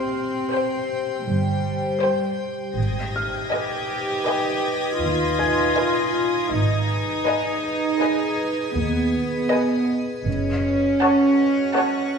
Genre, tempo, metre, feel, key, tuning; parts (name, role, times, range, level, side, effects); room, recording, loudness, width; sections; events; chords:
cinematic, suspense film score; 80 BPM; 5/4; straight; A4 = 440 Hz
rich studio violin section; melody; 0.0-12.2 s; G5 to A5; -33 LUFS; left 2 dB
warm chamber violin section; second line; 0.0-12.2 s; C5 to F#5; -28 LUFS; left 1 dB
dark symphonic viola section; accompaniment; 0.0-12.2 s; Cb5 to C#5; -29 LUFS; left 1 dB
icy glass pad; sustained chords; 0.0-12.2 s; Eb4 to G5; -27 LUFS; left 1 dB; chorus, built-in reverb
warm symphonic cello section; bass; 0.0-12.2 s; G3 to G4; -23 LUFS; right 1 dB
dark concert grand piano; texture; 0.0-10.3 s; Ab5 to Ab6; -34 LUFS; left 2 dB
dark symphonic double bass section; bass; 1.3-10.9 s; F#1 to Eb2; -26 LUFS; right 2 dB
warm symphonic violin section; texture; 2.8-9.9 s; Eb6 to Bb6; -31 LUFS; left 5 dB
wet scoring stage reverb, RT60 1.9 s; recorded in a church or concert hall; -20 LUFS; side -6 dB against mid
0.0-12.2 A section
0.0 C5; 2.8 Abm; 10.3 F#m